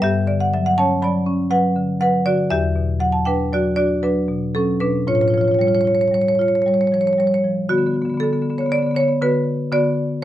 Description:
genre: classical, contemporary piece for solo marimba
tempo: 118 BPM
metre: 5/4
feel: uneven beats, rubato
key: D major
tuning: A4 = 437 Hz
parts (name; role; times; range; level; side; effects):
- marimba with medium hard mallets; solo; 0.0-10.2 s; E2 to B5; -16 LUFS; equal; none
room: light reverb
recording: dark, warm production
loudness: -16 LUFS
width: side -13 dB against mid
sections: 0.0-7.7 A section; 7.7-10.2 B section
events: none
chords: 0.0 Gmaj7#11; 2.5 Em9; 5.1 Aaug7; 7.7 D6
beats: | 0.04 0.54 1.04 1.53 2.03 | 2.53 3.03 3.52 4.03 4.54 | 5.06 5.58 6.11 6.64 7.17 | 7.69 8.20 8.70 9.20 9.70

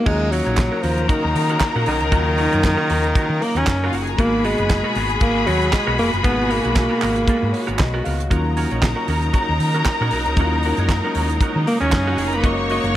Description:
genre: disco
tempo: 116 BPM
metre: 4/4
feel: swing 56% on 16ths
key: unclear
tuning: A4 = 440 Hz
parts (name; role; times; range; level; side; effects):
- warm alto saxophone; melody; 0.0-8.1, 11.7-13.0 s; D#3 to C#4; -21 LUFS; right 1 dB; none
- mellow tine electric piano; accompaniment; 0.0-13.0 s; B2 to E#5; -28 LUFS; left 3 dB; none
- rich symphonic string section; sustained chords; 0.0-13.0 s; B2 to F#4; -28 LUFS; right 1 dB; none
- clear studio violin section; second line; 0.1-13.0 s; C#4 to C#6; -24 LUFS; left 3 dB; none
- semi-hollow electric guitar; accompaniment; 0.1-13.0 s; B3 to E#5; -29 LUFS; right 5 dB; wide subtle chorus
- hollow-body short-scale fingered electric bass; bass; 0.1-13.0 s; E#1 to D#3; -23 LUFS; equal; none
- damped 70s drum kit; drums; 0.1-12.9 s; crash cymbal, hi-hat, kick drum, snare drum; -22 LUFS; equal; none
- group handclap; percussion; 0.6-12.1 s; none; -28 LUFS; right 6 dB; none
room: light reverb, small room ambience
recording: none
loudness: -16 LUFS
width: side -13 dB against mid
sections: 0.1-13.0 A section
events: tine electric piano fill 7.3-8.3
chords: 0.1 D#m7; 4.2 G#m9; 8.3 D#m7; 12.4 F#6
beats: | 0.06 0.57 1.09 1.60 | 2.12 2.63 3.15 3.66 | 4.18 4.70 5.21 5.73 | 6.24 6.76 7.28 7.79 | 8.31 8.82 9.34 9.86 | 10.37 10.89 11.40 11.92 | 12.44 12.95

